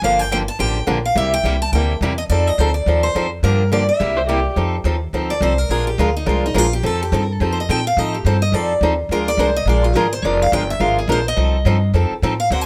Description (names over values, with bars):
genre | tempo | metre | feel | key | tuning
acoustic string swing (jazz manouche) | 212 BPM | 4/4 | swing 58% on 8ths | F mixolydian | A4 = 440 Hz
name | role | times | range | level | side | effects
picked steel-string acoustic guitar | melody | 0.0-12.7 s | D4 to A5 | -22 LUFS | equal | none
picked old ladder-braced acoustic guitar | accompaniment | 0.0-12.7 s | C3 to C5 | -23 LUFS | equal | none
upright bass | bass | 0.0-12.7 s | F1 to Bb2 | -22 LUFS | equal | none
dark viola | second line | 4.2-4.5 s | G4 to C5 | -26 LUFS | equal | none
room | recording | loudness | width
light reverb | close, detailed microphones | -18 LUFS | mono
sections
0.0-4.6 A section; 4.6-12.7 B section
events
steel-string acoustic guitar solo 4.6-12.7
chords
0.0 Gm7; 1.2 C7; 2.3 F7; 3.4 Gm7; 4.0 C7; 4.6 F7; 5.7 Bb7; 6.8 F7; 9.1 Bb7; 11.4 F7